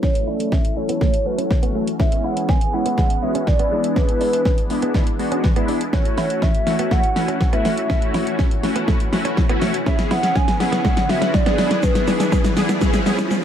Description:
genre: dance-pop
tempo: 122 BPM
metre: 4/4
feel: straight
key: F# minor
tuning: A4 = 440 Hz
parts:
  - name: hollow clarinet-like synth lead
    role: melody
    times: 0.0-12.8 s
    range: B4 to G#5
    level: -24 LUFS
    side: equal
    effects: chorus, low-pass filter, ping-pong delay
  - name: big bright polysynth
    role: accompaniment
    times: 0.0-13.3 s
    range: F#3 to G#4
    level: -24 LUFS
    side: left 1 dB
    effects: ensemble chorus, sidechain pumping, low-pass filter
  - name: warm analog pad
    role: sustained chords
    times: 0.0-13.4 s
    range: E3 to C#5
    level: -29 LUFS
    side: equal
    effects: chorus, sidechain pumping, low-pass filter
  - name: direct-recorded clean electric guitar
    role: riff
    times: 0.0-13.3 s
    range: G#3 to E4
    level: -28 LUFS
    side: right 6 dB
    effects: lush chorus, low-pass filter
  - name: pop drum kit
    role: drums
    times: 0.0-13.4 s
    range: hi-hat, kick drum, shaker, snare drum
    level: -19 LUFS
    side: equal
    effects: none
  - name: riser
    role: sound effects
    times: 7.9-13.4 s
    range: none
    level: -29 LUFS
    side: equal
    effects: none
room: little or no reverb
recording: none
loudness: -16 LUFS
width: side -9 dB against mid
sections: 0.0-13.4 A section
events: build-up 0.0-13.4; drum fill 0.0-13.4; filter sweep 0.0-13.4; riser 7.9-13.4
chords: 0.0 F#m7; 2.0 C#m7; 3.7 E7; 5.9 F#m7; 9.9 C#m7; 11.6 E7; 12.8 C#m7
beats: | 0.03 0.52 1.01 1.50 | 2.00 2.49 2.98 3.47 | 3.96 4.46 4.95 5.44 | 5.93 6.42 6.92 7.41 | 7.90 8.39 8.88 9.37 | 9.87 10.36 10.85 11.34 | 11.83 12.32 12.82 13.31

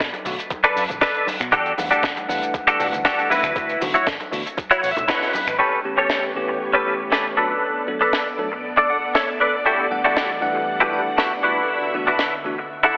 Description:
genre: nu-disco, nu disco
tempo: 118 BPM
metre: 4/4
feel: straight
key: E dorian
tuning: A4 = 440 Hz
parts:
  - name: fingered electric bass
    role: bass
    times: 0.0-5.6 s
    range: E1 to B2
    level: -35 LUFS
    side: equal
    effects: none
  - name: electronic kick drum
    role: drums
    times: 0.0-5.2 s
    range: none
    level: -26 LUFS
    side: equal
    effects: none
  - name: tight funk drum kit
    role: drums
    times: 0.0-12.3 s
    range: finger snaps, hi-hat, shaker, snare drum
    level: -25 LUFS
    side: equal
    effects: none
  - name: direct-recorded clean electric guitar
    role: riff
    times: 0.1-13.0 s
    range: C#4 to F#5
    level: -19 LUFS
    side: equal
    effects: ensemble chorus, low-pass filter, dub echo
  - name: congas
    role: percussion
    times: 0.1-5.4 s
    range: none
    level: -34 LUFS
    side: equal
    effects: none
  - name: bell-like tine electric piano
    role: accompaniment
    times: 0.2-12.5 s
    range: D3 to F#5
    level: -27 LUFS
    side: equal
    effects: medium stereo tremolo, dub echo
  - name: string machine, full ensemble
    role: sustained chords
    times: 5.6-13.0 s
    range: D3 to F#5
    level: -28 LUFS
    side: equal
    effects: ensemble chorus, sidechain pumping
room: moderate plate reverb, RT60 1.7 s, studio ambience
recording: heavily compressed radio sound, multiband compression, telephone sound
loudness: -18 LUFS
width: side -27 dB against mid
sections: 0.0-5.6 A section; 5.6-13.0 B section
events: clean electric guitar fill 4.6-5.6, 8.6-9.7; band accent 5.1; filter sweep on string machine 5.6-13.0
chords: 0.0 Bm7; 1.5 Em11; 3.3 D69; 5.6 A9; 7.4 Bm7; 9.7 Em11; 11.4 D69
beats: 0.00 0.51 1.02 | 1.52 2.03 2.54 3.05 | 3.56 4.07 4.58 5.08 | 5.59 6.10 6.61 7.12 | 7.63 8.13 8.64 9.15 | 9.66 10.17 10.68 11.19 | 11.69 12.20 12.71

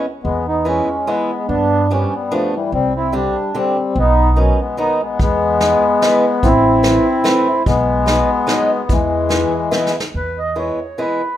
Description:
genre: musette waltz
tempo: 146 BPM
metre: 3/4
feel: swing 54% on 8ths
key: E major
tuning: A4 = 440 Hz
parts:
  - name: fingerpicked swing-style acoustic guitar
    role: accompaniment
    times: 0.0-11.2 s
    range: D3 to E4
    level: -20 LUFS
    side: right 1 dB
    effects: none
  - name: mellow accordion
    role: melody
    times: 0.2-11.4 s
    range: E3 to D#5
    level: -16 LUFS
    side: left 1 dB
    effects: none
  - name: upright bass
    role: bass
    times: 0.2-10.7 s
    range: A1 to G2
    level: -20 LUFS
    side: equal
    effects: none
  - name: vintage brush drum kit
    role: drums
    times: 5.2-10.1 s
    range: hi-hat, kick drum, snare drum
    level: -20 LUFS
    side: equal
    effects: none
room: light reverb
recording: minimal, uncompressed stereo recording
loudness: -14 LUFS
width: side -12 dB against mid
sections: 0.2-10.1 A section; 10.1-11.4 A section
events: drum fill 9.7-10.1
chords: 0.2 E; 1.5 G7; 2.7 Csus2; 4.0 B; 5.2 E; 6.4 Am; 7.7 B6; 8.9 E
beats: | 0.25 0.67 1.08 | 1.50 1.91 2.32 | 2.73 3.14 3.54 | 3.95 4.37 4.78 | 5.19 5.61 6.02 | 6.43 6.84 7.25 | 7.66 8.07 8.48 | 8.89 9.30 9.72 | 10.14 10.57 10.98

